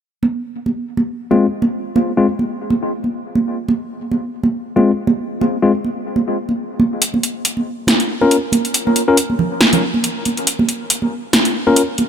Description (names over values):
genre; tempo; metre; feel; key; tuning
deep dubstep; 139 BPM; 4/4; swing 56% on 16ths, half-time; F minor; A4 = 440 Hz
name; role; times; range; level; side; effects
congas; percussion; 0.2-12.1 s; none; -18 LUFS; right 2 dB; dub echo
tine electric piano; stabs; 1.3-11.8 s; Ab3 to Bb4; -18 LUFS; left 3 dB; low-pass filter, dub echo
deep house drum kit; drums; 7.0-12.1 s; hi-hat, snare drum; -16 LUFS; equal; overdrive
room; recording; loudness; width
light reverb; none; -15 LUFS; side -8 dB against mid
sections
0.1-12.1 A section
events
none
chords
0.1 Fm; 7.0 Bbm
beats
| 0.11 0.54 0.97 1.41 | 1.84 2.27 2.70 3.13 | 3.56 4.00 4.43 4.86 | 5.29 5.72 6.15 6.59 | 7.02 7.45 7.88 8.31 | 8.74 9.18 9.61 10.04 | 10.47 10.90 11.33 11.77